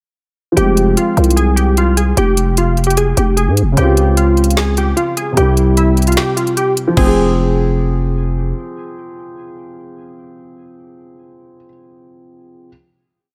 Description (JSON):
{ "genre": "hip hop, trap", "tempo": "150 BPM", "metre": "4/4", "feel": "half-time", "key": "F harmonic minor", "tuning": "A4 = 435 Hz", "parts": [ { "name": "dark grand piano", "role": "accompaniment", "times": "0.5-12.7 s", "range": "C3 to Ab4", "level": "-22 LUFS", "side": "equal", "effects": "low-pass filter" }, { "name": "glassy digital keys", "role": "melody", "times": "0.6-8.1 s", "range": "E4 to Ab4", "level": "-19 LUFS", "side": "equal", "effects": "chorus, low-pass filter, delay" }, { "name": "growling 808-style bass", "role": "bass", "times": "0.6-8.5 s", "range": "F1 to Ab2", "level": "-16 LUFS", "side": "equal", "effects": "none" }, { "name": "trap drum kit", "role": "drums", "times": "0.6-7.1 s", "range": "crash cymbal, hi-hat, kick drum, snare drum", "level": "-21 LUFS", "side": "equal", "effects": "none" } ], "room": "light reverb", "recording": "none", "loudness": "-14 LUFS", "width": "mono", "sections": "0.6-7.0 breakdown; 7.0-10.2 final chord", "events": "break 6.2-7.0", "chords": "0.6 Fm; 3.8 Dbmaj7; 5.4 C; 7.0 Fm" }